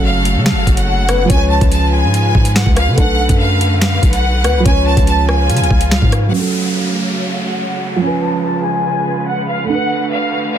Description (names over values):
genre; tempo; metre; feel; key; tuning
hip hop, drill; 143 BPM; 4/4; half-time; F# harmonic minor; A4 = 441 Hz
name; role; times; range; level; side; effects
bright studio violin section; melody; 0.0-10.6 s; E#5 to A5; -19 LUFS; equal; low-pass filter
felt-muted upright piano; accompaniment; 0.0-10.6 s; E#3 to B4; -20 LUFS; right 6 dB; low-pass filter
bright studio string section; sustained chords; 0.0-10.6 s; C#3 to C#5; -24 LUFS; left 1 dB; low-pass filter
hard-hitting 808-style bass; bass; 0.0-6.3 s; F#1 to C#3; -15 LUFS; equal; none
drill drum kit; drums; 0.3-6.2 s; finger snaps, hi-hat, kick drum, rim click, snare drum; -15 LUFS; equal; soft clipping on snare
soft octave-layered synth lead; second line; 1.1-6.3 s; A4 to E#5; -24 LUFS; left 7 dB; chorus, ping-pong delay
downlifter; sound effects; 6.3-9.7 s; none; -25 LUFS; equal; none
room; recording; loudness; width
little or no reverb; dense, heavily limited modern master; -12 LUFS; side -10 dB against mid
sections
0.0-6.3 A section; 6.3-10.6 B section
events
filter sweep 6.3-10.6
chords
0.0 F#m; 1.3 C#7; 3.0 Bm7; 4.7 C#7; 6.3 F#m; 8.0 C#7; 9.7 Bm7